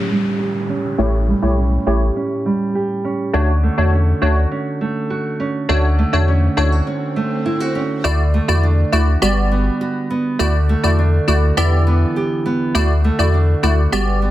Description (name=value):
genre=dancehall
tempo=102 BPM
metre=4/4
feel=straight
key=D major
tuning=A4 = 443 Hz
part: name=nylon-string guitar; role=arpeggios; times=0.0-14.3 s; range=A2 to G4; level=-20 LUFS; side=right 2 dB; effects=low-pass filter
part: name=downlifter and swell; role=sound effects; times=0.0-8.0 s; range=none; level=-30 LUFS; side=equal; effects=none
part: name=wavetable chord stab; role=accompaniment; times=1.0-14.3 s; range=A3 to D5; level=-20 LUFS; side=equal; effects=low-pass filter
part: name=warm sub bass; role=bass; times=1.0-14.3 s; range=G1 to E2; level=-15 LUFS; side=equal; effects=none
room=little or no reverb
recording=dense, heavily limited modern master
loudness=-15 LUFS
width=side -14 dB against mid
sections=0.0-8.0 A section; 8.0-14.3 B section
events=filter sweep 0.0-8.0; swell 6.5-8.0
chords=0.0 A7; 3.3 Dmaj7; 8.0 Dadd9; 9.2 Gmaj7; 10.4 Dadd9; 11.6 Em7; 12.8 Dadd9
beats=0.40 | 0.99 1.57 2.16 2.75 | 3.34 3.93 4.52 5.10 | 5.69 6.28 6.87 7.46 | 8.04 8.63 9.22 9.81 | 10.40 10.99 11.57 12.16 | 12.75 13.34 13.93